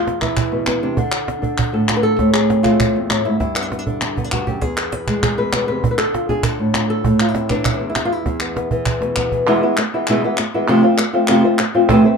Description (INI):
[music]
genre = flamenco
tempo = 198 BPM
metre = 4/4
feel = straight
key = E phrygian dominant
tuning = A4 = 439 Hz
[part]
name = flamenco guitar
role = melody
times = 0.0-12.2 s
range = E2 to B4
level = -16 LUFS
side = equal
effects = none
[part]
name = cajon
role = percussion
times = 0.1-9.4, 11.9-12.0 s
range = none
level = -22 LUFS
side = right 4 dB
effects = none
[part]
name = palmas hand claps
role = percussion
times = 0.2-12.0 s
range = none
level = -23 LUFS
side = left 1 dB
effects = none
[sound]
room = wet small room ambience, RT60 0.5 s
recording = minimal, uncompressed stereo recording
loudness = -15 LUFS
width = side -5 dB against mid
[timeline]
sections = 0.0-9.5 A section; 9.5-12.2 B section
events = drum fill 4.0-4.6, 9.0-9.5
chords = 0.0 E5; 1.0 Dm; 2.2 Am; 3.4 G5; 4.6 E; 5.8 Dm; 7.0 A5; 8.3 E5; 9.5 E; 10.7 F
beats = 0.07 0.37 0.68 | 0.98 1.28 1.59 1.89 | 2.19 2.50 2.80 3.10 | 3.41 3.71 4.01 4.32 | 4.62 4.92 5.23 5.53 | 5.83 6.14 6.44 6.75 | 7.05 7.35 7.66 7.96 | 8.26 8.56 8.87 9.17 | 9.47 9.77 10.08 10.38 | 10.68 10.98 11.29 11.59 | 11.89